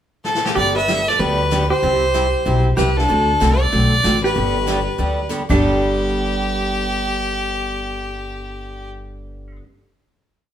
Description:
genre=country, western swing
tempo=190 BPM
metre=4/4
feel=swing 64% on 8ths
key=G major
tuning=A4 = 437 Hz
part: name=clear fiddle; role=melody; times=0.2-8.9 s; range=G4 to E5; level=-20 LUFS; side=left 1 dB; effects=none
part: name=jazz brush drum kit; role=drums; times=0.2-5.5 s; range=brushed snare drum, crash cymbal, hi-hat, kick drum, snare drum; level=-26 LUFS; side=left 1 dB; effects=none
part: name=vintage hollow-body jazz guitar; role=second line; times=0.6-9.6 s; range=D4 to B4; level=-24 LUFS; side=right 3 dB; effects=none
part: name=picked steel-string acoustic guitar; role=accompaniment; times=0.6-9.6 s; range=G2 to A4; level=-23 LUFS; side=right 1 dB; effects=none
part: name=upright bass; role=bass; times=0.6-9.6 s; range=G1 to D2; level=-22 LUFS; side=equal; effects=none
room=wet stone room reverb, RT60 1.1 s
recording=band playing live in one room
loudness=-16 LUFS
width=side -10 dB against mid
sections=0.0-0.6 pickup bar; 0.6-5.6 A section; 5.6-8.1 final hit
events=drum fill 0.2-0.6, 5.3-5.6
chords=0.0 N.C.; 0.6 G; 1.8 C; 3.1 D7; 4.4 G

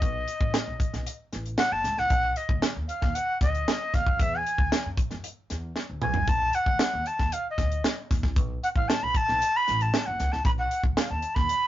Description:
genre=funk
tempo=115 BPM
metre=4/4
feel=straight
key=B mixolydian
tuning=A4 = 440 Hz
part: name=breathy bright jazz flute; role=melody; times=0.0-11.7 s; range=D#5 to B5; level=-26 LUFS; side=equal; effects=none
part: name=upright bass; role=bass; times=0.0-11.5 s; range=F#1 to F#2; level=-32 LUFS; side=equal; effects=none
part: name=tight funk drum kit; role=drums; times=0.0-11.6 s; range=hi-hat, kick drum, snare drum, toms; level=-26 LUFS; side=equal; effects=none
room=light reverb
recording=rough rehearsal-room recording, tube saturation, nothing above 7.5 kHz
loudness=-24 LUFS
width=side -13 dB against mid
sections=0.0-11.7 A section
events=flute solo 0.0-11.7; drum fill 5.8-6.3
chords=0.0 B7; 4.2 E9; 6.3 B7

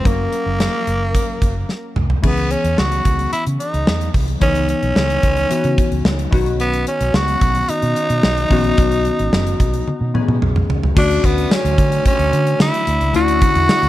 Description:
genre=1980s-style pop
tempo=110 BPM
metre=4/4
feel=straight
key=unclear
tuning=A4 = 439 Hz
part: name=raspy tenor saxophone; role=melody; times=0.0-13.9 s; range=A#3 to F#4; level=-20 LUFS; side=right 1 dB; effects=none
part: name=glassy digital keys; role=accompaniment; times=0.0-13.9 s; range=D3 to A#4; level=-22 LUFS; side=left 5 dB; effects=chorus
part: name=vintage muted fingered electric bass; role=bass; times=0.1-13.9 s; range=F#1 to D3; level=-20 LUFS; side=equal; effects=none
part: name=gated 80s drum kit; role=drums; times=0.1-13.9 s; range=crash cymbal, hi-hat, kick drum, snare drum, tambourine, toms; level=-18 LUFS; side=equal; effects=none
part: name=overdriven semi-hollow guitar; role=accompaniment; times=11.0-13.9 s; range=D3 to D4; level=-28 LUFS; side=right 1 dB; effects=wide subtle chorus
room=small room ambience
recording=none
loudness=-14 LUFS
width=side -15 dB against mid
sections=0.0-2.2 A section; 2.2-11.0 B section; 11.0-13.9 C section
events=drum fill 1.7-2.2, 9.9-11.0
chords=0.1 F#; 2.2 C#m7; 6.3 Badd9; 11.0 Dmaj7

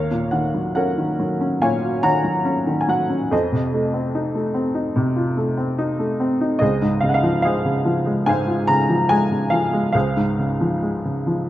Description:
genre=classical, lyrical solo piano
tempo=68-75 BPM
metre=4/4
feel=rubato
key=Db major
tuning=A4 = 436 Hz
part: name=clear upright piano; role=solo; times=0.0-11.5 s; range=Db2 to Bb5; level=-18 LUFS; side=equal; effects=none
room=moderate recital hall reverb, RT60 1.4 s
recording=close, detailed microphones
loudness=-18 LUFS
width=side -13 dB against mid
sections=0.0-11.5 A section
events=none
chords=0.0 Ebm9; 3.3 F7; 6.6 Dbmaj7

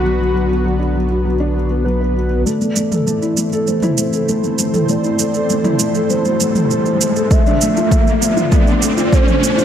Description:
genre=piano and strings electronica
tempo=99 BPM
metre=4/4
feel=straight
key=A minor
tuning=A4 = 439 Hz
part: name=warm velvety synth lead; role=melody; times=0.0-9.6 s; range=F#4 to E5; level=-22 LUFS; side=equal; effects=chorus, digital delay
part: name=lush unison pad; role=sustained chords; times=0.0-9.6 s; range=D3 to C5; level=-23 LUFS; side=equal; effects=chorus, sidechain pumping
part: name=felt-muted upright piano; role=riff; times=0.0-9.6 s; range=F#3 to B4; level=-18 LUFS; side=left 1 dB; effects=digital delay
part: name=round analog bass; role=bass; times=0.0-2.4 s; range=B1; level=-19 LUFS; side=equal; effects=sidechain pumping
part: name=electronic shaker and toms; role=drums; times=2.5-9.6 s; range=none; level=-21 LUFS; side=right 3 dB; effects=overdrive
part: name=riser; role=sound effects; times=4.1-9.6 s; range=none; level=-22 LUFS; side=right 2 dB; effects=none
part: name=electronic kick drum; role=drums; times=7.3-9.2 s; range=none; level=-14 LUFS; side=equal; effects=overdrive
room=moderate echo chamber reverb, RT60 2.1 s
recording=none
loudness=-13 LUFS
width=side -9 dB against mid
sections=0.0-2.5 A section; 2.5-9.6 B section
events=build-up 2.5-9.6; filter sweep on analog synth pad 2.5-9.6; filter sweep on soft synth lead 2.5-9.6; riser 4.1-9.6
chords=0.0 Bm; 2.5 Am; 7.3 Dm7

